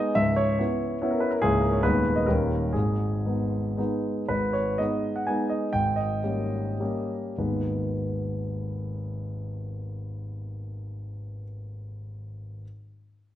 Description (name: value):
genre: classical, romantic triple-time dance for piano with dotted rhythms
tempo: 94-153 BPM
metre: 3/4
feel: rubato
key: G# minor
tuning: A4 = 440 Hz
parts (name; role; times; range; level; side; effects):
- warm concert grand piano; solo; 0.0-12.7 s; C#1 to G#5; -25 LUFS; equal; none
room: moderate recital hall reverb, RT60 1.4 s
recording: none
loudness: -24 LUFS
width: side -12 dB against mid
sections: 0.0-4.3 A section; 4.3-7.4 B section; 7.4-10.5 C section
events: slowing down 3.5-7.4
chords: 0.2 C#m7; 1.4 A#dim/C#; 1.8 G#m/D#; 2.3 D#7; 2.7 G#m; 5.7 D#7/G#; 7.4 G#m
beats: | 0.17 0.59 1.02 | 1.41 1.83 2.28 | 2.74 3.26 3.78 | 4.29 4.80 5.27 | 5.72 6.23 6.80 | 7.39 7.91 8.46 | 8.99 9.51 10.03